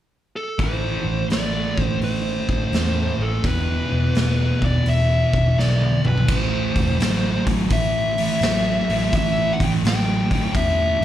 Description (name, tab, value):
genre	blues rock power trio and southern rock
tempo	84 BPM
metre	4/4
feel	swing 66% on 8ths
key	A minor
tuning	A4 = 440 Hz
part	fuzz lead guitar	melody	0.4-11.0 s	A4 to G5	-25 LUFS	left 1 dB	distortion, slapback echo
part	thick fuzz guitar	riff	0.6-11.0 s	E2 to A3	-22 LUFS	right 1 dB	distortion
part	vintage muted picked electric bass	bass	0.6-11.0 s	E1 to E2	-24 LUFS	equal	none
part	raw garage drum kit	drums	0.6-11.0 s	crash cymbal, hi-hat, kick drum, snare drum, toms	-24 LUFS	equal	none
room	light reverb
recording	live gig heard through the venue's PA, club reverb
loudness	-18 LUFS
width	side -12 dB against mid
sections	0.6-6.3 A section; 6.3-11.0 B section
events	drum fill 5.6-6.3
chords	0.0 N.C.; 0.6 Am; 3.4 E5; 6.3 Am